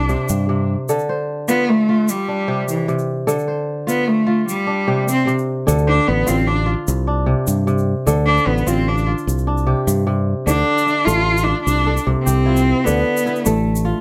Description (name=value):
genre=west african traditional, West African string and xylophone music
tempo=100 BPM (dotted quarters)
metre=12/8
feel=straight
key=D dorian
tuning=A4 = 440 Hz
part: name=rich cello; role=melody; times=0.0-13.9 s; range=E3 to F4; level=-20 LUFS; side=equal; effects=none
part: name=kora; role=arpeggios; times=0.0-14.0 s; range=C3 to E5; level=-23 LUFS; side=equal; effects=none
part: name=fingered electric bass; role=bass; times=0.0-0.8, 5.7-13.9 s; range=A1 to G2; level=-21 LUFS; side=equal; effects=none
part: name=egg shaker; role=percussion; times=0.1-13.8 s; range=none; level=-32 LUFS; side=equal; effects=none
room=light reverb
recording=close, detailed microphones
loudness=-18 LUFS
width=mono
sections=0.9-10.5 A section; 10.5-14.0 B section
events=cello solo 0.9-10.5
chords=0.0 C5; 0.9 Dm; 2.1 C5; 3.3 Dm; 4.5 C5; 5.7 Dm; 6.9 C5; 8.1 Dm; 9.3 C5; 10.5 Dm; 11.7 C; 12.9 Dm